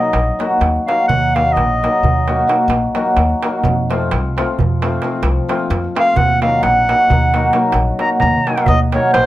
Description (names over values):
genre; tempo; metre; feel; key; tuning
balkan folk, Balkan wedding band; 260 BPM (eighths); 11/8; straight; Eb dorian sharp4; A4 = 440 Hz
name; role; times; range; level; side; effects
mellow clarinet; melody; 0.0-9.3 s; C5 to Bb5; -16 LUFS; equal; none
cimbalom; accompaniment; 0.0-9.3 s; F3 to Bb4; -17 LUFS; left 1 dB; none
upright bass; bass; 0.1-9.3 s; Bb1 to F2; -18 LUFS; equal; none
darbuka; percussion; 0.1-9.3 s; none; -21 LUFS; right 4 dB; none
room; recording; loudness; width
light reverb; none; -13 LUFS; side -15 dB against mid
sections
0.0-8.7 A section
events
clarinet solo 0.0-8.7; drum fill 8.3-8.7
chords
0.0 Ebm; 3.6 F; 6.2 Ebm